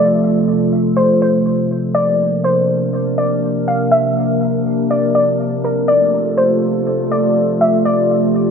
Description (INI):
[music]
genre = hip hop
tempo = 122 BPM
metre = 4/4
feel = half-time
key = F major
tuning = A4 = 440 Hz
[part]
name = soft round pluck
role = melody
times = 0.0-8.5 s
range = Bb4 to F5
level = -16 LUFS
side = left 1 dB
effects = chorus, low-pass filter, tape echo
[part]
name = warbly tape-like pad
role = sustained chords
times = 0.0-8.5 s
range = C3 to Bb4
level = -16 LUFS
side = equal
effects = chorus, built-in reverb
[sound]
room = wet echo chamber reverb, RT60 1.8 s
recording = low-pass filter, nothing above 7.9 kHz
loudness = -13 LUFS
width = side -6 dB against mid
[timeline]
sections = 0.0-8.5 A section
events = none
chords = 0.0 F; 2.0 Bbadd9; 5.9 F